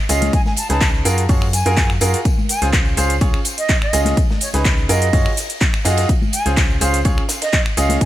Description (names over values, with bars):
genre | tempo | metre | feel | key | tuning
piano house | 125 BPM | 4/4 | straight | Db major | A4 = 441 Hz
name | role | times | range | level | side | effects
silver concert flute | melody | 0.1-8.1 s | Db5 to A5 | -24 LUFS | right 2 dB | ping-pong delay
bright baby grand piano | riff | 0.1-8.0 s | Db4 to Eb5 | -22 LUFS | right 1 dB | vintage 12-bit sampler grit, sidechain pumping
organ-like FM bass | bass | 0.1-8.0 s | Db2 to Gb2 | -19 LUFS | equal | sidechain pumping
deep reggae drum kit | drums | 0.1-8.1 s | hi-hat, ride cymbal, snare drum | -31 LUFS | right 2 dB | sidechain pumping on cymbals, high-pass filter on cymbals, sidechain pumping on hats, high-pass filter on hats, high-pass filter on snare, high-pass filter on room
house drum kit | drums | 0.1-8.1 s | finger snaps, handclaps, hi-hat, shaker | -22 LUFS | equal | none
tambourine and congas | percussion | 0.1-8.1 s | none | -28 LUFS | left 4 dB | none
electronic kick drum | drums | 0.3-8.1 s | none | -17 LUFS | equal | none
room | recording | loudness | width
small room ambience | none | -14 LUFS | side -14 dB against mid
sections
0.0-8.1 A section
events
none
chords
0.3 Cb13; 1.1 Gbmaj9; 2.3 Dbmaj7; 4.2 Abmadd11/Db; 4.9 Gbmaj9; 6.1 Dbmaj7